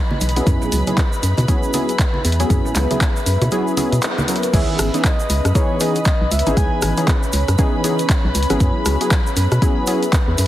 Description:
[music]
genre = deep house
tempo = 118 BPM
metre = 4/4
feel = swing 60% on 16ths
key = C# minor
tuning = A4 = 440 Hz
[part]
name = deep dark ambient pad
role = sustained chords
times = 0.0-10.5 s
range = E3 to D#6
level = -28 LUFS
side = left 2 dB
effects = chorus, built-in reverb, sidechain pumping
[part]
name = dark studio violin section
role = texture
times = 0.0-10.5 s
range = B4 to B5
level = -29 LUFS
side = left 1 dB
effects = sidechain pumping
[part]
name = congas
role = percussion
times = 0.1-4.3 s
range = none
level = -27 LUFS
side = right 1 dB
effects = sidechain pumping on perc
[part]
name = organ-like FM bass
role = bass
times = 0.2-10.5 s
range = G#1 to B2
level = -18 LUFS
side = equal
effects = sidechain pumping
[part]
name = punchy analog drum machine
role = drums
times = 0.2-10.5 s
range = crash cymbal, handclaps, hi-hat, rim click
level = -24 LUFS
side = equal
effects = none
[part]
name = tube shaker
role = percussion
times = 0.2-10.5 s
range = none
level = -31 LUFS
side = right 3 dB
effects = none
[part]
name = warm analog keys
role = stabs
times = 0.4-10.0 s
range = D#3 to A#4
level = -22 LUFS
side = equal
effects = chorus, sidechain pumping, tape echo
[part]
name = electronic kick drum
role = drums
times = 0.5-10.2 s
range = none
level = -17 LUFS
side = equal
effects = none
[part]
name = breathy flute-like synth lead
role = melody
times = 4.5-7.1 s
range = C#5 to G#5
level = -26 LUFS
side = equal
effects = wide subtle chorus, tape echo
[sound]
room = light reverb, digital ambience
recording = heavily compressed radio sound, multiband compression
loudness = -15 LUFS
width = side -14 dB against mid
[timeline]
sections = 0.0-4.5 A section; 4.5-10.5 B section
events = kick drops out 3.5-4.5; band accent 4.0; drop 4.5-10.5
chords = 0.5 F#9sus4; 4.5 C#m9; 8.6 F#9sus4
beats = | 0.47 0.98 1.49 1.99 | 2.50 3.01 3.52 4.03 | 4.54 5.04 5.55 6.06 | 6.57 7.08 7.59 8.10 | 8.60 9.11 9.62 10.13

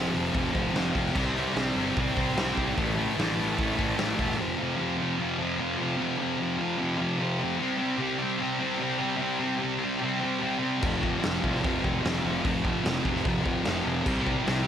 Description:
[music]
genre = garage rock duo or trio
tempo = 149 BPM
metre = 4/4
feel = straight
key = unclear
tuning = A4 = 436 Hz
[part]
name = thick fuzz guitar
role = riff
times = 0.0-14.7 s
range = F2 to C4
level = -26 LUFS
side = equal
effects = distortion
[part]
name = fuzz picked electric bass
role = bass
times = 0.0-4.3, 10.8-14.6 s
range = E1 to C2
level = -33 LUFS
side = equal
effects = overdrive, tube saturation
[part]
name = raw garage drum kit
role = drums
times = 0.1-4.3, 10.8-14.6 s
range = crash cymbal, hi-hat, kick drum, snare drum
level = -31 LUFS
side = equal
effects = none
[sound]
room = light reverb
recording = none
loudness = -25 LUFS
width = side -9 dB against mid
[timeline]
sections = 0.0-4.4 A section; 4.4-14.7 B section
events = none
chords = 0.0 F5; 1.2 C5; 2.8 A5; 4.4 F5; 7.6 C5; 10.8 F5; 14.1 C5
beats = 0.35 0.75 | 1.16 1.56 1.97 2.37 | 2.77 3.18 3.58 3.98 | 4.39 4.79 5.19 5.60 | 6.00 6.40 6.80 7.21 | 7.61 8.01 8.41 8.82 | 9.22 9.62 10.02 10.43 | 10.83 11.23 11.63 12.04 | 12.44 12.85 13.25 13.66 | 14.06 14.47

